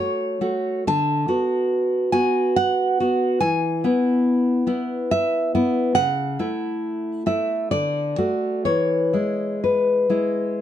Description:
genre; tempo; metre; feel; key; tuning
romantic piece for solo classical guitar; 61-72 BPM; 3/4; rubato; unclear; A4 = 440 Hz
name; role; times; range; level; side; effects
nylon-string guitar; solo; 0.0-10.6 s; C#3 to A5; -19 LUFS; equal; none
room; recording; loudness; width
light reverb; dark, warm production; -19 LUFS; side -10 dB against mid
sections
0.0-10.6 A section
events
none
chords
0.0 F#m/A; 0.9 Bm7/D; 3.4 E; 6.0 A/C#; 7.7 D; 8.7 E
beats
| 0.87 1.71 2.56 | 3.41 4.25 5.09 | 5.95 6.82 7.72 | 8.67 9.63 10.55

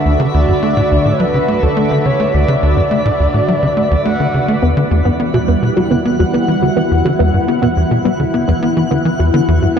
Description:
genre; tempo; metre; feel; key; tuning
ambient, sequencer-driven space music; 105 BPM; 4/4; straight; D major; A4 = 438 Hz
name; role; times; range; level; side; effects
phased analog pad; sustained chords; 0.0-9.8 s; D3 to F#5; -18 LUFS; equal; phaser, chorus
twinkling granular texture; texture; 0.0-9.8 s; D4 to F#5; -25 LUFS; equal; built-in reverb
tight sequencer bass; riff; 0.1-9.8 s; D2 to B3; -14 LUFS; equal; wide subtle chorus, ping-pong delay
breathy flute-like synth lead; melody; 0.3-4.6 s; A4 to F#5; -20 LUFS; equal; chorus, cassette tape, ping-pong delay
wide unison pluck; arpeggios; 4.6-9.8 s; B3 to F#4; -18 LUFS; right 1 dB; phaser, auto-pan, ping-pong delay
room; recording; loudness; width
wet huge ambient reverb, RT60 7.5 s; dark, warm production; -11 LUFS; side -7 dB against mid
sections
0.0-9.8 A section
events
none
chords
0.0 Dadd9; 4.6 Emadd9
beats
| 0.06 0.63 1.20 1.77 | 2.34 2.91 3.48 4.06 | 4.63 5.20 5.77 6.34 | 6.91 7.48 8.06 8.63 | 9.20 9.77

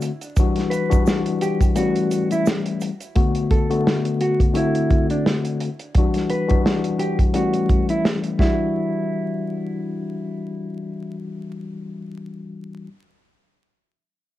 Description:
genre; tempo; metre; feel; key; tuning
hip hop, boom-bap hip-hop; 86 BPM; 4/4; swing 57% on 16ths; E minor; A4 = 440 Hz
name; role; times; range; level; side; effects
mellow tine electric piano; accompaniment; 0.0-12.9 s; D3 to F#4; -23 LUFS; left 4 dB; medium stereo tremolo, high-pass filter, low-pass filter, cassette tape
warm soul drum kit; drums; 0.0-8.6 s; hi-hat, kick drum, snare drum; -20 LUFS; equal; none
tube shaker; percussion; 0.0-3.1 s; none; -42 LUFS; right 10 dB; none
mellow electric guitar; melody; 0.7-10.8 s; D4 to B4; -26 LUFS; right 2 dB; high-pass filter, low-pass filter, cassette tape, tape echo
room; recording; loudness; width
moderate studio ambience, RT60 0.5 s; home recording on cassette, vinyl crackle; -18 LUFS; side -14 dB against mid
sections
0.0-3.2 A section; 3.2-8.7 B section; 8.7-11.5 C section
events
break 1.8-3.2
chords
0.4 Em9; 1.8 A7; 3.2 Bm7; 4.6 D7; 6.0 Em9; 7.3 A7; 8.4 Em9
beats
| 0.37 1.07 1.76 2.46 | 3.16 3.86 4.55 5.25 | 5.95 6.65 7.35 8.04 | 8.74 9.44 10.14 10.83

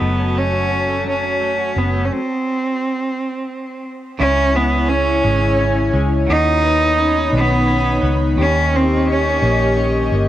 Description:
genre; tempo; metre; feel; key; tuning
pop; 57 BPM (dotted quarters); 6/8; straight; C# minor; A4 = 440 Hz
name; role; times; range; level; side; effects
clear cello; melody; 0.0-10.1 s; B3 to D#4; -18 LUFS; right 2 dB; cassette tape, tape echo
direct-recorded clean electric guitar; accompaniment; 0.0-10.3 s; C#3 to G4; -23 LUFS; left 1 dB; double-tracked left and right
airy breathy pad; sustained chords; 0.0-10.3 s; D#4 to C#6; -23 LUFS; left 2 dB; chorus
vintage muted fingered electric bass; bass; 0.0-10.3 s; F#1 to D#2; -19 LUFS; equal; none
room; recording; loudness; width
digital ambience; home recording on cassette; -14 LUFS; side -12 dB against mid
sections
0.0-4.2 A section; 4.2-10.3 B section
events
stop 2.1-4.2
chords
0.0 F#m; 2.1 N.C.; 4.2 C#m; 6.3 Badd9/D#; 8.4 D#7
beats
| 0.01 1.06 | 2.11 3.16 | 4.20 5.25 | 6.29 7.34 | 8.39 9.43

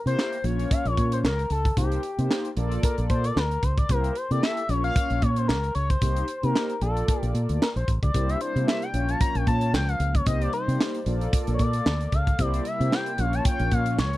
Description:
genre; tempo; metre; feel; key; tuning
early-eighties boogie funk; 113 BPM; 4/4; swing 56% on 16ths; unclear; A4 = 442 Hz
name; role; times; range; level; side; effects
expressive synth lead; melody; 0.1-14.2 s; G4 to Bb5; -29 LUFS; left 2 dB; chorus
mellow synth brass; accompaniment; 0.1-14.0 s; Bb3 to D5; -31 LUFS; left 1 dB; chorus
fingered electric bass; bass; 0.1-14.2 s; A1 to C3; -25 LUFS; equal; none
tight funk drum kit; drums; 0.1-14.2 s; handclaps, hi-hat, kick drum, snare drum; -26 LUFS; equal; none
warm analog pad; sustained chords; 8.1-14.2 s; C3 to D5; -36 LUFS; equal; chorus
room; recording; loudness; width
little or no reverb; dry, close 1970s-style studio recording; -22 LUFS; side -16 dB against mid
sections
0.0-14.2 A section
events
analog synth lead solo 0.0-14.2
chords
0.4 Bbm; 1.8 Cm7; 2.6 Bbmaj7; 3.9 C7; 4.7 Bbm; 6.0 Cm7; 6.8 Bbmaj7; 8.1 C7; 8.9 Bbm; 10.3 Cm7; 11.1 Bbmaj7; 12.4 C7; 13.2 Bbm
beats
0.18 0.71 1.24 | 1.77 2.30 2.83 3.36 | 3.90 4.43 4.96 5.49 | 6.02 6.55 7.08 7.61 | 8.14 8.67 9.21 9.74 | 10.27 10.80 11.33 11.86 | 12.39 12.92 13.45 13.98

